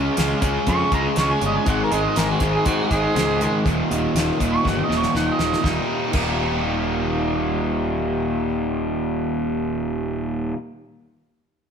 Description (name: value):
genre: classic rock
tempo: 120 BPM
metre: 4/4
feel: straight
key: Eb mixolydian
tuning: A4 = 444 Hz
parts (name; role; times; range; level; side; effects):
- crunchy overdriven guitar; riff; 0.0-10.6 s; Eb2 to Eb4; -22 LUFS; equal; none
- fuzz picked electric bass; bass; 0.0-10.5 s; Eb1 to Ab2; -26 LUFS; equal; overdrive
- damped 70s drum kit; drums; 0.2-6.3 s; crash cymbal, hi-hat, kick drum, snare drum; -25 LUFS; equal; none
- overdriven harmonica; melody; 0.7-5.6 s; Gb4 to Db6; -24 LUFS; right 3 dB; none
room: wet stone room reverb, RT60 1.3 s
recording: band playing live in one room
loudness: -19 LUFS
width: side -7 dB against mid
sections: 0.0-5.6 A section; 5.6-9.6 B section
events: harmonica solo 0.0-5.6; drum fill 4.6-5.6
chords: 0.0 Db5; 1.7 Ab5; 3.6 Eb5; 5.6 Eb